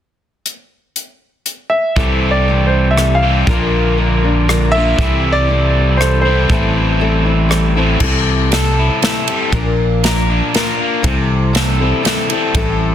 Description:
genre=folk rock and heartland rock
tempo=119 BPM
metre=3/4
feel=straight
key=C mixolydian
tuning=A4 = 438 Hz
part: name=natural country drum kit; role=drums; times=0.5-12.7 s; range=crash cymbal, hi-hat, kick drum, ride cymbal, rim click, snare drum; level=-18 LUFS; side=equal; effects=none
part: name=warm grand piano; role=melody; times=1.7-7.7 s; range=C5 to F5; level=-18 LUFS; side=equal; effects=analog delay
part: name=picked steel-string acoustic guitar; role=accompaniment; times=2.0-12.9 s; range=A2 to Bb4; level=-20 LUFS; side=left 4 dB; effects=none
part: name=crunchy overdriven guitar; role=riff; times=2.0-12.9 s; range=A2 to Bb4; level=-18 LUFS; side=equal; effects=none
part: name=fingered electric bass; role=bass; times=2.0-12.9 s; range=A1 to C2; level=-16 LUFS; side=right 1 dB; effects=none
room=light reverb, studio ambience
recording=dense, heavily limited modern master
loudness=-12 LUFS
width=side -10 dB against mid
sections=0.5-2.0 A section; 2.0-8.0 B section; 8.0-12.9 C section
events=none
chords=0.5 N.C.; 2.0 C6; 3.5 Bb; 5.0 C6; 6.5 Am7; 8.0 C6; 9.5 Bb; 11.0 C6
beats=| 0.46 0.96 1.47 | 1.97 2.48 2.98 | 3.48 3.99 4.49 | 4.99 5.50 6.00 | 6.51 7.01 7.51 | 8.02 8.52 9.03 | 9.53 10.03 10.54 | 11.04 11.55 12.05 | 12.55

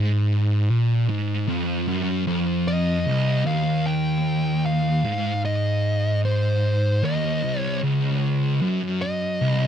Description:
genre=metal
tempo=76 BPM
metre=4/4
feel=straight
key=C phrygian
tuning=A4 = 438 Hz
part: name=thick fuzz guitar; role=riff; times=0.0-9.7 s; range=C2 to Bb2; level=-21 LUFS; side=equal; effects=distortion
part: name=fuzz lead guitar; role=melody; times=2.7-9.7 s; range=C5 to G5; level=-27 LUFS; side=equal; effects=distortion, tape echo
room=little or no reverb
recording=dry, close 1970s-style studio recording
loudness=-20 LUFS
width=side -9 dB against mid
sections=0.0-3.1 A section; 3.1-9.7 B section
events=none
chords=0.0 Fm; 3.1 Cm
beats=0.71 1.49 2.28 | 3.07 3.86 4.66 5.45 | 6.24 7.04 7.83 8.62 | 9.42

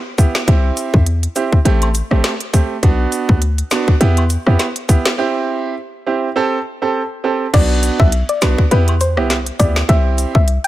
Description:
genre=dancehall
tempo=102 BPM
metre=4/4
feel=swing 56% on 16ths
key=E minor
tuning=A4 = 443 Hz
part: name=clear baby grand piano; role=accompaniment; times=0.2-10.4 s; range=A3 to A4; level=-19 LUFS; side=right 4 dB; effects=none
part: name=island pop drum kit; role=drums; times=0.2-10.7 s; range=crash cymbal, hi-hat, kick drum, rim click, snare drum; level=-16 LUFS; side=equal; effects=none
part: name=cabasa and woodblock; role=percussion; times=0.2-10.3 s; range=none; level=-29 LUFS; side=left 4 dB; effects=none
part: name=short 808-style bass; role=bass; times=0.5-10.6 s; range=A1 to E2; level=-14 LUFS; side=equal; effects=none
part: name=soft round pluck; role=melody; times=7.5-10.7 s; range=B4 to G5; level=-20 LUFS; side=left 2 dB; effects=chorus
room=little or no reverb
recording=none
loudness=-13 LUFS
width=side -15 dB against mid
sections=0.0-7.5 A section; 7.5-10.7 B section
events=break 5.2-7.5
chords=0.5 C; 1.7 Am7; 2.8 Bm; 4.0 Em; 5.2 C; 6.4 Am7; 7.5 Bm; 8.7 Em; 9.9 C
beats=| 0.48 1.07 1.66 2.24 | 2.83 3.42 4.01 4.60 | 5.18 5.77 6.36 6.95 | 7.54 8.12 8.71 9.30 | 9.89 10.48

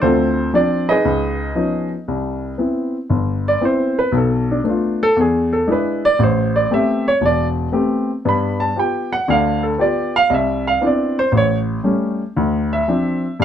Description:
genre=jazz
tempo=117 BPM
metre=4/4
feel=swing 69% on 8ths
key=C major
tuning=A4 = 442 Hz
part: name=warm baby grand piano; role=solo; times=0.0-13.4 s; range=E1 to B5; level=-15 LUFS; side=equal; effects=none
room=moderate club reverb, RT60 0.7 s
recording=dark, warm production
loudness=-15 LUFS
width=side -9 dB against mid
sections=0.0-2.1 A section; 2.1-13.4 B section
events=grand piano solo 2.1-13.4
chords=0.0 Dm7; 1.1 Db9; 2.1 Cmaj7; 4.1 Bm7b5; 5.2 E7; 6.2 Am9; 8.2 G7; 10.3 Cmaj9; 11.3 A7; 12.4 Dm7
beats=| 0.02 0.54 1.05 1.56 | 2.08 2.59 3.10 3.62 | 4.13 4.64 5.16 5.67 | 6.18 6.70 7.21 7.73 | 8.24 8.76 9.27 9.78 | 10.30 10.81 11.33 11.84 | 12.36 12.87 13.38

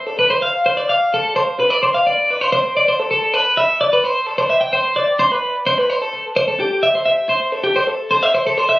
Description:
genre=rock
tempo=257 BPM (eighths)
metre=9/8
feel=straight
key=unclear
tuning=A4 = 439 Hz
part: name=twelve-string electric guitar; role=solo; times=0.0-8.8 s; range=G4 to G5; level=-14 LUFS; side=equal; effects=tape echo
room=moderate studio reverb, RT60 0.7 s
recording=recorded on a phone in the room, club reverb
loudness=-14 LUFS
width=side -18 dB against mid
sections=0.0-4.3 A section; 4.3-8.8 B section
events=none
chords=none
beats=| 0.07 0.30 0.54 0.77 1.00 1.24 1.47 1.70 1.94 | 2.17 2.40 2.64 2.87 3.10 3.34 3.57 3.80 4.04 | 4.27 4.50 4.74 4.97 5.20 5.43 5.67 5.90 6.13 | 6.37 6.60 6.83 7.07 7.30 7.53 7.76 8.00 8.23 | 8.46 8.70

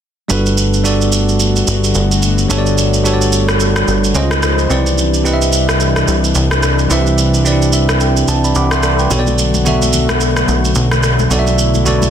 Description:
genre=amapiano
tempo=109 BPM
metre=4/4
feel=swing 58% on 16ths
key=G major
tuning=A4 = 440 Hz
part: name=bell-like tine electric piano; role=accompaniment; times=0.3-12.1 s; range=B2 to D6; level=-16 LUFS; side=right 3 dB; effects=none
part: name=warm analog pad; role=sustained chords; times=0.3-12.1 s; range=C3 to B#4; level=-20 LUFS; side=left 3 dB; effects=chorus
part: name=plucky analog bass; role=bass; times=0.3-12.1 s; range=G1 to C#2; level=-16 LUFS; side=equal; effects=none
part: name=electronic shaker and rim click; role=drums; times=0.3-12.1 s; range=none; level=-17 LUFS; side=right 1 dB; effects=soft clipping on snare
part: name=congas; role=percussion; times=9.1-12.1 s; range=none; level=-24 LUFS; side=left 6 dB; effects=none
room=light reverb, digital ambience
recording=dense, heavily limited modern master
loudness=-11 LUFS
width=side -9 dB against mid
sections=0.3-12.1 A section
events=tine electric piano fill 7.5-9.1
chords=0.3 Gmaj9; 4.2 C#maj9; 4.7 Cmaj9; 9.1 Bm7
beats=| 0.30 0.85 1.40 1.95 | 2.50 3.05 3.60 4.15 | 4.70 5.25 5.80 6.36 | 6.91 7.46 8.01 8.56 | 9.11 9.66 10.21 10.76 | 11.31 11.86

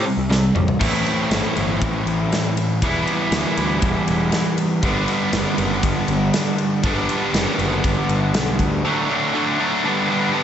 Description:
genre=indie rock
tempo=120 BPM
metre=4/4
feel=straight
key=unclear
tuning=A4 = 441 Hz
part: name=cranked stack guitar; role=riff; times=0.0-10.4 s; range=G2 to E4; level=-19 LUFS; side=equal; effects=overdrive, slapback echo
part: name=fuzz picked electric bass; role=bass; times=0.2-8.8 s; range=E1 to D2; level=-25 LUFS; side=equal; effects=overdrive
part: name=big rock drum kit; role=drums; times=0.3-8.7 s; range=crash cymbal, kick drum, ride cymbal, snare drum, toms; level=-24 LUFS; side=equal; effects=none
room=moderate lush hall reverb, RT60 1.7 s, small room ambience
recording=big arena sound, nothing above 8.0 kHz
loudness=-17 LUFS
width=side -9 dB against mid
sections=0.8-8.8 A section; 8.8-10.4 B section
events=drum fill 0.3-0.8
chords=0.0 C5; 0.8 Am7; 2.8 Em7; 4.8 Gmaj7; 8.8 D; 9.8 G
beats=0.30 | 0.81 1.31 1.81 2.32 | 2.82 3.32 3.83 4.33 | 4.83 5.33 5.84 6.34 | 6.84 7.34 7.84 8.34 | 8.84 9.34 9.84 10.34

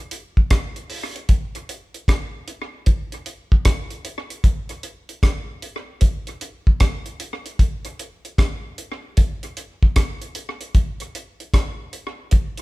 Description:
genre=reggae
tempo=76 BPM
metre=4/4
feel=swing 65% on 16ths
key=none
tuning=none
part: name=deep reggae drum kit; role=drums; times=0.1-12.6 s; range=hi-hat, kick drum, rim click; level=-19 LUFS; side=equal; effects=none
room=light reverb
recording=band playing live in one room, faint mains hum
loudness=-19 LUFS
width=side -21 dB against mid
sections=0.0-12.6 A section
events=none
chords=none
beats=0.51 | 1.29 2.08 2.87 3.66 | 4.44 5.23 6.02 6.81 | 7.59 8.38 9.17 9.96 | 10.74 11.53 12.32

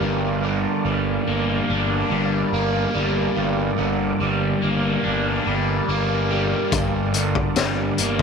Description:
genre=psychedelic rock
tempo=71 BPM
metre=4/4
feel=straight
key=G minor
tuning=A4 = 440 Hz
part: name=bright tonewheel organ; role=sustained chords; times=0.0-8.2 s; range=Bb3 to D5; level=-28 LUFS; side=right 10 dB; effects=slow rotary speaker, chorus vibrato
part: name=crunchy overdriven guitar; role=riff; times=0.0-8.2 s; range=G2 to D4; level=-22 LUFS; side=left 1 dB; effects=phaser
part: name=fuzz fingered electric bass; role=bass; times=0.0-8.2 s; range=G1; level=-25 LUFS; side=equal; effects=overdrive
part: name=raw garage drum kit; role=drums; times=6.7-8.2 s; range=hi-hat, kick drum, snare drum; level=-23 LUFS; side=left 5 dB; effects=none
part: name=tambourine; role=percussion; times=6.7-7.8 s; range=none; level=-38 LUFS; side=left 13 dB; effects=none
room=light reverb, small room ambience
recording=1960s-style stereo with parts hard left and right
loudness=-19 LUFS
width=side -6 dB against mid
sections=0.0-8.2 A section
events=none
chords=0.0 Gm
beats=| 0.01 0.85 1.69 2.53 | 3.37 4.21 5.05 5.89 | 6.73 7.57

